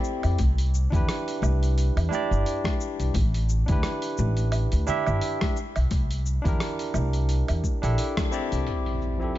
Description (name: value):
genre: sunset chillout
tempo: 87 BPM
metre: 4/4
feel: swing 56% on 16ths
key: unclear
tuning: A4 = 439 Hz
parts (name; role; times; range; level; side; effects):
- barky tine electric piano; accompaniment; 0.0-9.4 s; F3 to E5; -29 LUFS; moving between left 5 dB and right 5 dB; auto-pan, ping-pong delay
- dusty soul sampler-style drum kit; drums; 0.0-9.4 s; hi-hat, rim click, shaker, woodblock; -35 LUFS; right 1 dB; overdrive, low-pass filter on hats, low-pass filter on perc, low-pass filter on snare
- upright bass; bass; 0.2-8.6 s; G1 to F2; -24 LUFS; equal; none
- electronic kick drum; drums; 0.4-8.3 s; none; -26 LUFS; equal; none
- congas; percussion; 0.4-8.3 s; none; -34 LUFS; left 2 dB; none
- impact; sound effects; 8.7-9.4 s; none; -29 LUFS; equal; none
room: little or no reverb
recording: dark, warm production, nothing above 7.7 kHz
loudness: -22 LUFS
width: side -14 dB against mid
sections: 0.0-8.7 A section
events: band accent 8.2-8.5; impact 8.7-9.4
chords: 0.4 Cmaj7; 3.2 A9sus4; 5.6 C7; 8.7 Fmaj9